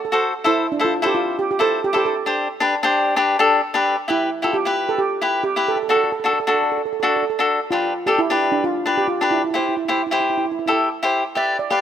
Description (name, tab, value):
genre	calypso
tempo	132 BPM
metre	4/4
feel	swing 54% on 16ths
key	C major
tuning	A4 = 440 Hz
part	steel pan	melody	0.0-11.8 s	D4 to F5	-22 LUFS	right 4 dB	none
part	cavaquinho	accompaniment	0.1-11.8 s	D4 to D5	-18 LUFS	left 2 dB	none
room	light reverb, small room reverb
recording	rough home demo mix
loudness	-17 LUFS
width	side -9 dB against mid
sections	0.0-11.4 A section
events	none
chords	0.4 Am; 2.3 Gsus4; 3.2 G; 4.1 Em; 5.9 D; 7.7 G; 9.5 C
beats	| 0.45 0.90 1.36 1.81 | 2.27 2.72 3.17 3.63 | 4.08 4.54 4.99 5.44 | 5.90 6.35 6.80 7.26 | 7.71 8.17 8.62 9.08 | 9.53 9.99 10.44 10.90 | 11.35 11.81